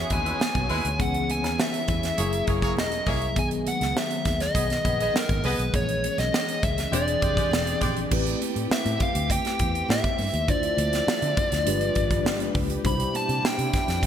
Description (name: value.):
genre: polished 1980s jazz-funk pop.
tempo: 101 BPM.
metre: 4/4.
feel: straight.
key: A minor from 8.1 s.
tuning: A4 = 440 Hz.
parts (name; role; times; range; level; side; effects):
fuzz lead guitar; melody; 0.0-14.1 s; A#4 to B5; -27 LUFS; equal; distortion, digital delay.
mellow tine electric piano; accompaniment; 0.0-14.1 s; B2 to C5; -30 LUFS; left 3 dB; medium stereo tremolo, wide subtle chorus.
dark studio string section; sustained chords; 0.0-14.1 s; B2 to G5; -36 LUFS; right 1 dB; none.
vintage muted fingered electric bass; bass; 0.0-14.1 s; E1 to D3; -29 LUFS; equal; none.
warm horn section; second line; 0.1-8.0 s; G#3 to D#5; -33 LUFS; equal; none.
modern studio drum kit; drums; 0.1-14.1 s; crash cymbal, hi-hat, kick drum, snare drum; -27 LUFS; right 1 dB; gated reverb.
congas; percussion; 0.1-14.1 s; none; -41 LUFS; right 6 dB; none.
room: moderate plate reverb, RT60 2.1 s.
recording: bright 1980s-style digital production.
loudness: -22 LUFS.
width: side -9 dB against mid.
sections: 0.0-8.1 A section; 8.1-14.1 B section.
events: none.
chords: 0.0 Emaj7; 1.0 C#m7; 2.2 F#9; 3.4 B6; 5.7 A#m7b5; 6.9 E7alt; 8.1 Am9; 10.5 Dm9; 11.7 G7b9; 12.8 Cmaj9.